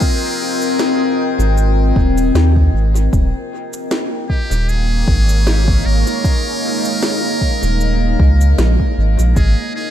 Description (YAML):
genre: ambient dub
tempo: 77 BPM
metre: 4/4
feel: swing 55% on 16ths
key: Eb mixolydian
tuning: A4 = 442 Hz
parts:
  - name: trumpet with metal mute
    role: melody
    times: 0.0-9.9 s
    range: G4 to Bb4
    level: -24 LUFS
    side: equal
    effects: dub echo
  - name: deep dark ambient pad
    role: sustained chords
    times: 0.0-9.9 s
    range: Ab3 to G5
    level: -19 LUFS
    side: left 2 dB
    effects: chorus, built-in reverb
  - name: electronic kick drum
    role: drums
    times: 0.0-9.5 s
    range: none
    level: -16 LUFS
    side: equal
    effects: none
  - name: electronic shaker and snare drum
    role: drums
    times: 0.0-9.5 s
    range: none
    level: -24 LUFS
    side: equal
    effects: dub echo
  - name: warm sub bass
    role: bass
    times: 1.4-9.6 s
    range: Eb1 to Eb2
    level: -13 LUFS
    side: equal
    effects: none
room: little or no reverb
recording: none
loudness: -13 LUFS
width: side -11 dB against mid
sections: 0.0-9.9 A section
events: none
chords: 0.0 Ab; 3.1 Ebsus4; 9.4 Ab